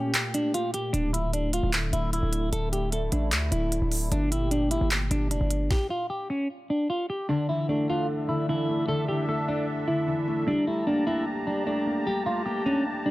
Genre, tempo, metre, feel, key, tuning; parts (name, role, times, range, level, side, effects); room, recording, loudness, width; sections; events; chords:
hip hop, trap; 151 BPM; 4/4; half-time; A4 = 442 Hz
semi-hollow electric guitar; melody; 0.0-13.1 s; C#4 to A4; -28 LUFS; equal; phaser
sweeping resonant pad; sustained chords; 0.0-13.1 s; Bb2 to Bb5; -34 LUFS; right 1 dB; lush chorus
trap drum kit; drums; 0.1-5.8 s; handclaps, hi-hat, kick drum, snare drum; -28 LUFS; equal
hard-hitting 808-style bass; bass; 0.9-5.7 s; D1 to D2; -27 LUFS; equal
felt-muted upright piano; accompaniment; 7.3-13.1 s; D3 to D4; -29 LUFS; left 1 dB
little or no reverb; -24 LUFS; side -17 dB against mid
0.0-7.3 A section; 7.3-13.1 B section
break 0.0-0.9; stop 5.7-7.3
0.0 Gmadd9; 0.9 Dsus2; 4.1 Gmadd9; 7.3 Dsus2; 10.5 Gmadd9